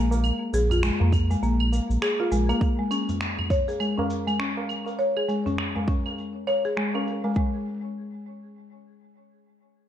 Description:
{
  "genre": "organic downtempo",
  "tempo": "101 BPM",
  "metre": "4/4",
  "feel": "swing 59% on 16ths",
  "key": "unclear",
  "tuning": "A4 = 440 Hz",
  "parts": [
    { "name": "buzzing marimba with medium mallets", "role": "arpeggios", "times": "0.0-7.6 s", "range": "Ab3 to Db5", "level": "-26 LUFS", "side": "left 1 dB", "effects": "ping-pong delay" },
    { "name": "warm sub bass", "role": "bass", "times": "0.0-2.5 s", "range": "Bb1 to F2", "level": "-23 LUFS", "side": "equal", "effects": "tube saturation" },
    { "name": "electronic shaker, claves and finger snaps", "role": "drums", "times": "0.1-7.3 s", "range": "none", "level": "-32 LUFS", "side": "right 1 dB", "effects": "low-pass filter on perc, low-pass filter on snare, low-pass filter on room" },
    { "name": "tabla", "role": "percussion", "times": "0.1-7.3 s", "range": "none", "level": "-34 LUFS", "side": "right 2 dB", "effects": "none" },
    { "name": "electronic kick drum", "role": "drums", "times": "1.1-7.5 s", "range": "none", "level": "-25 LUFS", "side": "equal", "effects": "none" }
  ],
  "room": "light reverb",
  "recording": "none",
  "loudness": "-23 LUFS",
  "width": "side -10 dB against mid",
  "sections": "0.0-7.4 A section; 7.4-9.7 B section",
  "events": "none",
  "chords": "0.0 Bb5; 2.6 Absus4; 7.4 N.C.",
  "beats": "| 0.23 0.83 1.42 2.02 | 2.61 3.20 3.80 4.39 | 4.99 5.58 6.17 6.77 | 7.36"
}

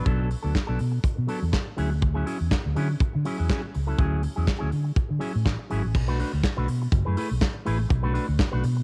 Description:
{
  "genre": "disco",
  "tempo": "122 BPM",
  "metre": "4/4",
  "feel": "straight",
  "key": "B dorian",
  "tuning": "A4 = 440 Hz",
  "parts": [
    { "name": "electric guitar with an envelope filter", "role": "accompaniment", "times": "0.0-8.8 s", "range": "F#3 to B4", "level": "-34 LUFS", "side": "equal", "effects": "cassette tape" },
    { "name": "fingered electric bass", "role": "bass", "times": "0.1-8.8 s", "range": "F#1 to D3", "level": "-28 LUFS", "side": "equal", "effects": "none" },
    { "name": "modern studio drum kit", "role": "drums", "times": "0.1-8.8 s", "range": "crash cymbal, handclaps, hi-hat, kick drum, snare drum", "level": "-28 LUFS", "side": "equal", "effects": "cassette tape" }
  ],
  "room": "small room ambience",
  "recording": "home recording on cassette",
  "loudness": "-25 LUFS",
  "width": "mono",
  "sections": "0.0-5.9 A section; 5.9-8.8 B section",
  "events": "none",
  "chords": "0.0 Bm7; 1.8 Dmaj9#11; 5.9 Bm7; 6.9 F#m11; 7.9 Bm7",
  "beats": "| 0.06 0.55 1.04 1.53 | 2.02 2.52 3.01 3.50 | 3.99 4.48 4.97 5.46 | 5.95 6.44 6.93 7.42 | 7.91 8.39"
}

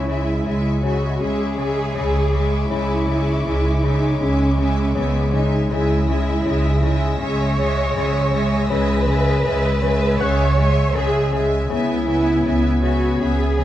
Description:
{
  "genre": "cinematic, suspense film score",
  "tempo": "80 BPM",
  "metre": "4/4",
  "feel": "straight",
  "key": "unclear",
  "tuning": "A4 = 440 Hz",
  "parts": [
    { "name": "rich symphonic violin section", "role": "melody", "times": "0.0-13.6 s", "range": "G#5", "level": "-32 LUFS", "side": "left 3 dB", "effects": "none" },
    { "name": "warm symphonic violin section", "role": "second line", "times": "0.0-13.6 s", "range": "E5", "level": "-32 LUFS", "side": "left 2 dB", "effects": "none" },
    { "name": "warm symphonic viola section", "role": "accompaniment", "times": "0.0-13.6 s", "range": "G#3 to B3", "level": "-24 LUFS", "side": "left 1 dB", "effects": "none" },
    { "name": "Celtic harp", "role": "riff", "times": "0.0-13.6 s", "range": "C#3 to C#4", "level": "-25 LUFS", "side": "left 4 dB", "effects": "none" },
    { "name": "dark symphonic double bass section", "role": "bass", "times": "0.0-13.6 s", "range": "C#2", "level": "-21 LUFS", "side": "right 1 dB", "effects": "none" },
    { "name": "warm symphonic cello section", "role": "bass", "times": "0.0-13.6 s", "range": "B3 to C#5", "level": "-23 LUFS", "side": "right 2 dB", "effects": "none" },
    { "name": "Celtic harp", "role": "texture", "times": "0.0-12.5 s", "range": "F#5 to F#6", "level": "-34 LUFS", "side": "left 7 dB", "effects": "none" },
    { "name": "warm symphonic violin section", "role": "texture", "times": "0.0-13.6 s", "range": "B5 to B6", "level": "-35 LUFS", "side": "left 2 dB", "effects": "none" }
  ],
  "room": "wet recital hall reverb, RT60 1.3 s",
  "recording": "dark, warm production",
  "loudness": "-17 LUFS",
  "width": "side -12 dB against mid",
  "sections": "0.0-13.6 A section",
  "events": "none",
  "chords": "0.0 E/C#; 5.7 C#m; 11.7 E/C#",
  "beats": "0.46 1.21 1.96 | 2.71 3.46 4.21 4.96 | 5.71 6.46 7.21 7.96 | 8.71 9.46 10.21 10.96 | 11.71 12.46 13.21"
}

